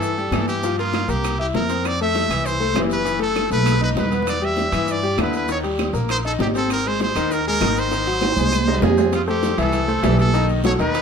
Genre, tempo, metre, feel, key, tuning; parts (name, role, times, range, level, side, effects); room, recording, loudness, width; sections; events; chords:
latin, salsa; 198 BPM; 4/4; straight; A4 = 439 Hz
brilliant trumpet; melody; 0.0-11.0 s; F4 to E5; -23 LUFS; right 2 dB
bright grand piano; accompaniment; 0.0-11.0 s; D3 to E5; -23 LUFS; left 5 dB
upright bass; bass; 0.0-11.0 s; F#1 to G2; -24 LUFS; right 1 dB
bongos; percussion; 0.0-11.0 s; -29 LUFS; left 4 dB
congas; percussion; 0.0-11.0 s; -28 LUFS; right 2 dB
guiro; percussion; 0.0-11.0 s; -40 LUFS; right 5 dB
maracas; percussion; 0.0-11.0 s; -42 LUFS; left 4 dB
claves; percussion; 0.3-8.7 s; -36 LUFS; right 10 dB
timbales; percussion; 0.3-11.0 s; -27 LUFS; right 5 dB
moderate studio reverb, RT60 0.9 s; minimal, uncompressed stereo recording; -17 LUFS; side -6 dB against mid
0.0-9.1 A section; 9.1-11.0 B section
drum fill 3.5-4.3, 8.2-9.1
0.0 C (rootless); 0.6 Gm7; 1.2 C7; 1.8 Fmaj7; 3.1 F#madd11; 3.7 Badd11; 4.3 Em7; 5.5 Eb; 6.7 Abadd9; 7.9 Ab7; 9.1 Fmaj7; 10.3 B7